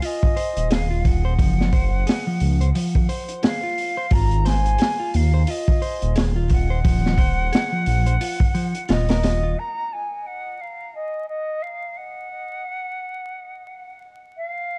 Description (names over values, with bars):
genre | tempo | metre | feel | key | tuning
trip hop | 88 BPM | 4/4 | swing 59% on 16ths | unclear | A4 = 439 Hz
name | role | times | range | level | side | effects
silver concert flute | melody | 0.0-14.8 s | Eb5 to Bb5 | -30 LUFS | equal | tape echo
clean electric guitar | arpeggios | 0.0-9.6 s | F3 to C5 | -30 LUFS | equal | tape echo
crunchy breakbeat drum kit | drums | 0.0-9.4 s | hi-hat, kick drum, snare drum | -23 LUFS | equal | vintage 12-bit sampler grit
dark detuned saw bass | bass | 0.6-9.5 s | Eb1 to Eb2 | -22 LUFS | equal | none
room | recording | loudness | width
little or no reverb | dark, warm production, vinyl crackle | -21 LUFS | mono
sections
0.0-9.6 A section; 9.6-14.8 B section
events
none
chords
0.0 Fm7; 1.4 Gb5; 4.1 Ab; 6.8 Ebm; 9.6 N.C.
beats
0.03 0.71 | 1.39 2.07 2.75 3.43 | 4.12 4.80 5.48 6.16 | 6.84 7.53 8.21 8.89 | 9.57 10.25 10.93 11.62 | 12.30 12.98 13.66 14.34